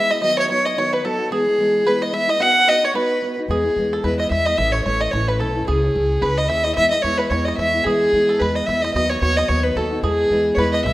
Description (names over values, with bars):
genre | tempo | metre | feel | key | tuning
celtic folk, Celtic reel | 220 BPM | 4/4 | swing 57% on 8ths | unclear | A4 = 439 Hz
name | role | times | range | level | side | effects
dark fiddle | melody | 0.0-10.9 s | G#4 to F#5 | -18 LUFS | equal | slapback echo
bluegrass banjo | second line | 0.0-10.9 s | G#4 to F#5 | -29 LUFS | right 3 dB | none
fingerpicked steel-string acoustic guitar | accompaniment | 0.0-10.9 s | A2 to C#5 | -25 LUFS | equal | none
upright bass | bass | 3.5-10.9 s | A1 to E2 | -24 LUFS | equal | none
room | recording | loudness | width
moderate lush hall reverb, RT60 2.4 s | rough home demo mix | -16 LUFS | side -16 dB against mid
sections
0.0-3.5 A section; 3.5-10.9 A section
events
none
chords
0.2 B/D#; 1.3 E; 2.4 B; 3.5 E; 4.6 A; 5.7 C#m; 6.8 E; 8.9 B/D#; 10.0 E